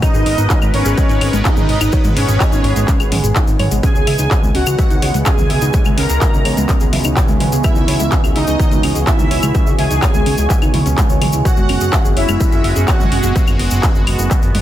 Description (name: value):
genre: melodic techno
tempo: 126 BPM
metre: 4/4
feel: straight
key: C# dorian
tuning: A4 = 441 Hz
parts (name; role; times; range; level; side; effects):
- analog synth brass; melody; 0.0-13.4 s; C#4 to A#4; -23 LUFS; equal; chorus, tape echo
- soft supersaw; second line; 0.0-13.4 s; C#5 to A#5; -26 LUFS; right 1 dB; sidechain pumping, dub echo
- sweeping resonant pad; sustained chords; 0.0-14.6 s; C#3 to B4; -25 LUFS; right 2 dB; chorus, sidechain pumping
- soft round pluck; arpeggios; 0.0-13.3 s; G#3 to E5; -24 LUFS; equal; chorus, sidechain pumping, dub echo
- electronic kick drum; drums; 0.0-14.4 s; none; -15 LUFS; equal; distortion, studio reverb
- techno drum kit; drums; 0.0-14.6 s; claves, handclaps, hi-hat, toms; -21 LUFS; left 1 dB; studio reverb
- egg shaker; percussion; 0.0-14.5 s; none; -29 LUFS; left 3 dB; none
- deep dark ambient pad; texture; 0.0-14.6 s; B3 to C#6; -26 LUFS; right 2 dB; chorus, built-in reverb, sidechain pumping
- fat analog bass; bass; 0.1-14.6 s; F#1 to C#2; -18 LUFS; equal; sidechain pumping
room: light reverb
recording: dense, heavily limited modern master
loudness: -12 LUFS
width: side -12 dB against mid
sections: 0.0-14.6 A section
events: none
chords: 0.0 G#m; 3.8 C#m; 11.5 F#sus2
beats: | 0.02 0.50 0.98 1.45 | 1.93 2.40 2.88 3.36 | 3.83 4.31 4.79 5.26 | 5.74 6.21 6.69 7.17 | 7.64 8.12 8.60 9.07 | 9.55 10.02 10.50 10.98 | 11.45 11.93 12.40 12.88 | 13.36 13.83 14.31